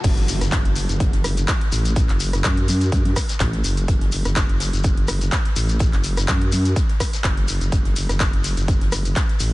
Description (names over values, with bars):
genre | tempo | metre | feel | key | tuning
bass house | 125 BPM | 4/4 | swing 55% on 16ths | F# minor | A4 = 440 Hz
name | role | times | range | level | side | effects
vowel-sweep wobble bass | bass | 0.0-9.5 s | F#1 to F#2 | -21 LUFS | equal | chorus, sidechain pumping
big-room dance drum kit | drums | 0.0-9.5 s | crash cymbal, handclaps, hi-hat, ride cymbal, rim click | -26 LUFS | equal | overdrive, studio reverb
electronic kick drum | drums | 0.0-9.3 s | none | -20 LUFS | equal | studio reverb
open jazz drum kit | drums | 0.0-9.5 s | hi-hat, snare drum | -39 LUFS | left 2 dB | none
shekere | percussion | 0.0-9.5 s | none | -31 LUFS | left 4 dB | none
swell and impact | sound effects | 0.0-2.0 s | none | -32 LUFS | equal | none
room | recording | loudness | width
studio ambience | high-pass filter, nothing above 10.5 kHz | -17 LUFS | side -19 dB against mid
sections
0.0-9.5 A section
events
drop 0.0-9.5; impact 0.0-2.0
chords
none